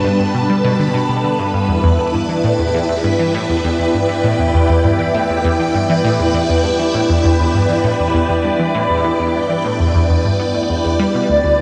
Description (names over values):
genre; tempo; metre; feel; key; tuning
ambient, sequencer-driven space music; 100 BPM; 4/4; straight; unclear; A4 = 442 Hz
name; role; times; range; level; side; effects
string machine, full ensemble; sustained chords; 0.0-11.6 s; G3 to A5; -18 LUFS; equal; phaser, ensemble chorus, cassette tape
analog pluck; riff; 0.0-11.5 s; D2 to B3; -19 LUFS; equal; chorus, phaser, vintage 12-bit sampler grit, cassette tape, tape echo
bubbling stepped-filter texture; texture; 0.0-11.6 s; A3 to B4; -32 LUFS; equal; none
wooden flute; melody; 11.3-11.6 s; D5; -16 LUFS; equal; cassette tape
room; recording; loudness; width
wet lush hall reverb, RT60 2.4 s; home recording on cassette; -16 LUFS; mono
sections
0.0-11.6 A section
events
none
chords
0.0 G; 1.7 Em7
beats
0.50 1.10 | 1.70 2.30 2.90 3.50 | 4.10 4.70 5.30 5.90 | 6.50 7.10 7.70 8.30 | 8.90 9.50 10.10 10.70 | 11.30